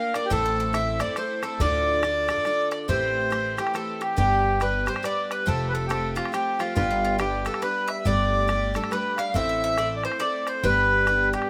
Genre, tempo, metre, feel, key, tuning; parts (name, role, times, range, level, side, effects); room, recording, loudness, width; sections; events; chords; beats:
celtic folk, Celtic waltz; 139 BPM; 3/4; swing 61% on 8ths; A4 = 440 Hz
accordion; melody; 0.0-11.5 s; F4 to F5; -27 LUFS; equal
bowl-back mandolin; second line; 0.0-11.5 s; F4 to F5; -36 LUFS; equal
picked twelve-string acoustic guitar; accompaniment; 0.0-11.5 s; D2 to Bb4; -32 LUFS; equal
bodhran; percussion; 0.1-11.5 s; -33 LUFS; equal
upright bass; bass; 0.3-11.3 s; F1 to D2; -31 LUFS; equal
light reverb, small room ambience; rough home demo mix; -24 LUFS; mono
0.0-2.9 A section; 2.9-11.5 B section
0.3 Am; 1.6 Dm; 2.9 Am7; 4.2 G; 5.5 Fadd9; 6.8 G; 8.1 Gsus2; 9.3 Am; 10.6 G
| 0.31 0.74 1.17 | 1.60 2.03 2.46 | 2.89 3.32 3.75 | 4.18 4.61 5.04 | 5.47 5.90 6.33 | 6.76 7.20 7.63 | 8.06 8.49 8.92 | 9.35 9.78 10.21 | 10.64 11.07